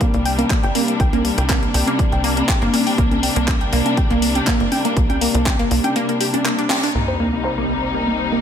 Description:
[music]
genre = progressive house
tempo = 121 BPM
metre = 4/4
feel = straight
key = unclear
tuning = A4 = 441 Hz
[part]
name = rich studio string section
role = sustained chords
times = 0.0-8.4 s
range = C3 to Eb4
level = -22 LUFS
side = left 2 dB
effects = sidechain pumping
[part]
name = wide unison pluck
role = arpeggios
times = 0.0-8.4 s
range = Bb3 to G5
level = -21 LUFS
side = equal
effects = sidechain pumping, digital delay
[part]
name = deep house drum kit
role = drums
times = 0.0-8.4 s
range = crash cymbal, handclaps, hi-hat, shaker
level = -24 LUFS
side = left 1 dB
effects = low-pass filter on hats, low-pass filter on snare, low-pass filter on cymbals, low-pass filter on perc, low-pass filter on room
[part]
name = electronic kick drum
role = drums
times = 0.0-5.6 s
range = none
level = -19 LUFS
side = equal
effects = none
[part]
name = tight sequencer bass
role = bass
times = 0.1-8.4 s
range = G1 to C2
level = -23 LUFS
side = equal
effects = sidechain pumping
[part]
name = congas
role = percussion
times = 0.4-6.8 s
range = none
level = -25 LUFS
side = right 2 dB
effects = sidechain pumping on perc
[part]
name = sub drop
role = sound effects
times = 7.0-8.4 s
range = none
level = -28 LUFS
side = equal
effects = none
[sound]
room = light reverb, digital ambience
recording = none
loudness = -16 LUFS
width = side -8 dB against mid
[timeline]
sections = 0.0-7.0 A section; 7.0-8.4 B section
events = kick drops out 6.0-7.0; drum fill 6.7; band accent 6.7; impact 7.0-8.4; filter sweep on drum 7.0-8.4; filter sweep on synth pluck 7.0-8.4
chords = 0.0 Gm; 7.0 Cm7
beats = 0.01 0.50 | 1.00 1.50 1.99 2.49 | 2.98 3.48 3.97 4.47 | 4.97 5.46 5.96 6.45 | 6.95 7.45 7.94

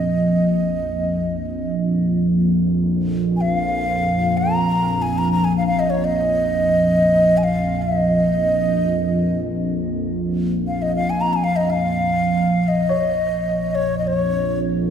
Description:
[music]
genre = world meditative, free-time meditation music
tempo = free time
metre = none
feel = none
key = Bb minor pentatonic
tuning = A4 = 440 Hz
[part]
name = breathy bright xiao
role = melody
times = 0.0-14.9 s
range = Db5 to Bb5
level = -20 LUFS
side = equal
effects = diffuse ambient delay
[part]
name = deep dark ambient pad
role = drone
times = 0.0-14.9 s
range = Bb1 to F2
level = -19 LUFS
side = equal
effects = chorus, built-in reverb
[part]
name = felt-muted upright piano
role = texture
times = 12.9-14.9 s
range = Db5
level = -30 LUFS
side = right 1 dB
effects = none
[sound]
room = wet scoring stage reverb, RT60 1.5 s, small room reverb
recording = none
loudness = -17 LUFS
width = side -8 dB against mid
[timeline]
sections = 0.0-14.9 A section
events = none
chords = none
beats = free time

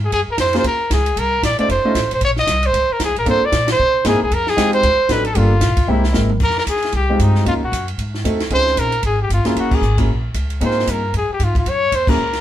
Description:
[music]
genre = jazz, small-group swing and bop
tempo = 229 BPM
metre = 4/4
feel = swing 59% on 8ths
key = F minor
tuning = A4 = 440 Hz
[part]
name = breathy trumpet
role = melody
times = 0.0-12.4 s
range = Eb4 to Eb5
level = -18 LUFS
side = equal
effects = none
[part]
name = upright bass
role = bass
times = 0.0-12.4 s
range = Eb1 to C3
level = -20 LUFS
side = equal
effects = none
[part]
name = compact cocktail drum kit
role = drums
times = 0.1-12.4 s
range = crash cymbal, hi-hat, kick drum, ride cymbal, snare drum, toms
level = -23 LUFS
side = right 1 dB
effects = none
[part]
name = warm concert grand piano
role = accompaniment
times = 0.5-12.2 s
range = F#3 to Eb5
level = -20 LUFS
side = equal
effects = none
[sound]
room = light reverb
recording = band playing live in one room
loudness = -14 LUFS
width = side -12 dB against mid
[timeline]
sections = 0.0-6.4 A section; 6.4-12.4 B section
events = band accent 3.7, 9.7, 12.1; drum fill 5.9-6.4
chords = 0.1 Gbmaj9; 1.2 Bbmaj9; 1.7 F7b13; 2.2 Bbmadd9; 3.3 Gm11; 3.8 C7alt; 4.3 Fm7; 4.8 D7b9; 5.4 Gm7; 5.9 C7b13; 6.4 Fm9; 7.5 Ebm9; 8.0 Ab7b9; 8.5 Dbmaj7; 9.6 Gb9; 10.6 Ab69; 11.7 Gb7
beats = | 0.12 0.39 0.65 0.91 | 1.17 1.43 1.69 1.96 | 2.22 2.48 2.74 3.00 | 3.27 3.53 3.79 4.05 | 4.31 4.58 4.84 5.10 | 5.36 5.62 5.88 6.15 | 6.41 6.67 6.93 7.20 | 7.46 7.72 7.99 8.25 | 8.51 8.77 9.04 9.30 | 9.56 9.82 10.09 10.35 | 10.61 10.87 11.14 11.40 | 11.66 11.92 12.19

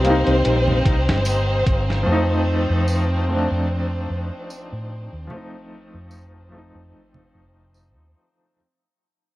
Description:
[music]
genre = trip hop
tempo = 74 BPM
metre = 4/4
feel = swing 54% on 16ths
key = unclear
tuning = A4 = 441 Hz
[part]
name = clear upright piano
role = accompaniment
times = 0.0-8.6 s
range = F3 to Eb4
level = -23 LUFS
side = left 1 dB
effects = tremolo, vintage 12-bit sampler grit, tape echo
[part]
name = clear studio violin section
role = sustained chords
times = 0.0-8.6 s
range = C4 to C5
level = -25 LUFS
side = equal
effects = low-pass filter
[part]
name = hollow-body short-scale fingered electric bass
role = bass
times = 0.0-8.1 s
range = F1 to A2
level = -22 LUFS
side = equal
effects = tube saturation
[part]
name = boom bap sampler-style drum kit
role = drums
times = 0.0-2.1 s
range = hi-hat, kick drum, snare drum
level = -21 LUFS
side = equal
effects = vintage 12-bit sampler grit
[part]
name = congas and tambourine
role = percussion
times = 0.7-7.9 s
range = none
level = -28 LUFS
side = right 2 dB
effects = none
[sound]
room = light reverb, small room ambience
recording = worn, warbling old tape, cassette tape, warbly pitch drift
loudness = -17 LUFS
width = side -17 dB against mid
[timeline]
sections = 0.0-8.6 A section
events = fade-out 0.0-8.6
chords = 0.0 Cm7; 2.1 F7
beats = 0.45 1.26 | 2.07 2.88 3.69 4.50 | 5.31 6.12 6.93 7.74

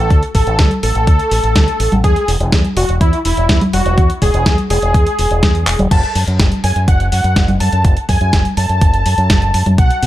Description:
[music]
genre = italo disco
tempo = 124 BPM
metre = 4/4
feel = straight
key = F# minor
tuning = A4 = 440 Hz
[part]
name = wide unison lead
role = melody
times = 0.0-10.1 s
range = E4 to A5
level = -17 LUFS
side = equal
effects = ping-pong delay
[part]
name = fingered electric bass with an envelope filter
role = bass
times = 0.0-10.1 s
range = E1 to B2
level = -16 LUFS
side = equal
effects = tube saturation
[part]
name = clean 12-bit digital drum machine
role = drums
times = 0.1-10.1 s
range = congas, crash cymbal, handclaps, hi-hat, snare drum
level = -18 LUFS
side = equal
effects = none
[part]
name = electronic kick drum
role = drums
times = 0.1-9.9 s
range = none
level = -13 LUFS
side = equal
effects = none
[sound]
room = little or no reverb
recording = none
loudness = -11 LUFS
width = side -14 dB against mid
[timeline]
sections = 0.0-5.9 A section; 5.9-10.1 A section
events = drum fill 5.7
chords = 0.0 D5; 2.0 E; 5.9 F#m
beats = | 0.11 0.59 1.07 1.56 | 2.04 2.53 3.01 3.49 | 3.98 4.46 4.95 5.43 | 5.91 6.40 6.88 7.36 | 7.85 8.33 8.82 9.30 | 9.78

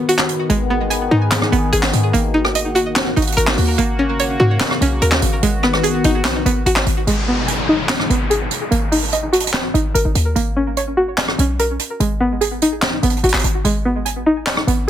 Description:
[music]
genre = hip hop, trap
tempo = 146 BPM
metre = 4/4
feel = half-time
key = G# minor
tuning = A4 = 440 Hz
[part]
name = sweeping resonant pad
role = sustained chords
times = 0.0-7.1 s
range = C#3 to G#4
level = -22 LUFS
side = left 3 dB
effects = chorus
[part]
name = string-like resonator pluck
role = arpeggios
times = 0.0-14.9 s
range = G#3 to G#5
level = -19 LUFS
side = right 1 dB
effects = chorus, low-pass filter, digital delay
[part]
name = jazz brush drum kit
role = drums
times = 0.1-14.8 s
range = handclaps, hi-hat, rim click, snare drum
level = -20 LUFS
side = right 1 dB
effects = soft clipping on snare
[part]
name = short 808-style bass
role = bass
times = 0.5-14.9 s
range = G#1 to G#2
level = -19 LUFS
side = equal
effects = none
[part]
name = downlifter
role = sound effects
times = 7.1-10.4 s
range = none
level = -24 LUFS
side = left 2 dB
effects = none
[sound]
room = light reverb, studio reverb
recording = dense, heavily limited modern master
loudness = -14 LUFS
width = side -10 dB against mid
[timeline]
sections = 0.0-7.1 A section; 7.1-14.9 B section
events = break 0.0-0.5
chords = 0.5 G#m; 2.1 D#m/G#; 3.8 F#/G#; 5.4 B/G#; 7.1 G#m; 8.7 D#m/G#; 10.4 F#/G#; 12.0 B/G#; 13.6 G#m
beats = 0.08 | 0.49 0.91 1.32 1.73 | 2.14 2.55 2.96 3.37 | 3.78 4.19 4.61 5.02 | 5.43 5.84 6.25 6.66 | 7.07 7.48 7.89 8.30 | 8.71 9.12 9.54 9.95 | 10.36 10.77 11.18 11.59 | 12.00 12.41 12.82 13.23 | 13.65 14.06 14.47 14.88

